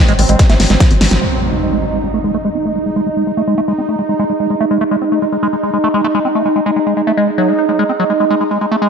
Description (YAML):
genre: psychedelic trance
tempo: 146 BPM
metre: 4/4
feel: straight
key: G# major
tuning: A4 = 437 Hz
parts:
  - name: formant-sweep wobble bass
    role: second line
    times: 0.0-0.6 s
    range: B#3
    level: -34 LUFS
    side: left 3 dB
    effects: none
  - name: bubbling stepped-filter texture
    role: sustained chords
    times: 0.0-8.9 s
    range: F#3 to D#4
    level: -18 LUFS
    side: right 2 dB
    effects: chorus, built-in reverb, sidechain pumping
  - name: liquid acid bass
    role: riff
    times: 0.0-8.9 s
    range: F#3 to D#4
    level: -16 LUFS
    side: moving between left 3 dB and right 4 dB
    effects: phaser, auto-pan, cassette tape, sidechain pumping, tape echo
  - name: tight sequencer bass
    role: bass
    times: 0.1-1.2 s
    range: G#1 to A1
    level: -14 LUFS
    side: equal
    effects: none
  - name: big-room dance drum kit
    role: drums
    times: 0.1-1.3 s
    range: crash cymbal, hi-hat, rim click, snare drum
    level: -16 LUFS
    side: equal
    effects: low-pass filter on hats, low-pass filter on snare, low-pass filter on cymbals
  - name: electronic kick drum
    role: drums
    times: 0.4-0.9 s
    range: none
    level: -10 LUFS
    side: equal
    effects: none
  - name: impact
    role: sound effects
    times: 1.2-2.9 s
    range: none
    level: -22 LUFS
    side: equal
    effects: none
  - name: warbly tape-like pad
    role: texture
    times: 2.5-8.9 s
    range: D#4 to D#5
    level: -21 LUFS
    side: right 2 dB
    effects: chorus, built-in reverb, sidechain pumping
room: moderate lush hall reverb, RT60 1.9 s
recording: none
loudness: -12 LUFS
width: side -6 dB against mid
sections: 0.0-1.2 A section; 1.2-8.9 B section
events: drum fill 0.4-1.2; band accent 1.1; impact 1.2-2.9; filter sweep on acid bass 1.2-8.9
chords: 0.0 G#5